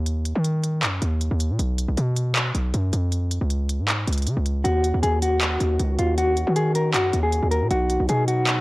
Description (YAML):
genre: hip hop, trap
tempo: 157 BPM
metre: 4/4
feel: half-time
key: Eb minor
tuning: A4 = 443 Hz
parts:
  - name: hard-hitting 808-style bass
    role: bass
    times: 0.0-8.6 s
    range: B1 to Eb3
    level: -22 LUFS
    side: equal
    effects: none
  - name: trap drum kit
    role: drums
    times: 0.1-8.6 s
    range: handclaps, hi-hat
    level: -26 LUFS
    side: equal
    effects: none
  - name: mellow electric guitar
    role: melody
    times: 4.6-8.6 s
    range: F4 to Bb4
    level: -23 LUFS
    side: left 1 dB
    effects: tremolo
  - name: dark French horn section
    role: sustained chords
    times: 4.6-8.6 s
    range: Eb3 to Gb4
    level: -29 LUFS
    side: equal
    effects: stereo widening
room: little or no reverb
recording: dry, gritty hardware recording, cassette tape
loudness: -20 LUFS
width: side -20 dB against mid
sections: 0.0-8.6 A section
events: break 0.0-4.6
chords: 0.0 N.C.; 1.6 B5; 3.1 Db; 4.6 Ebm7; 7.7 B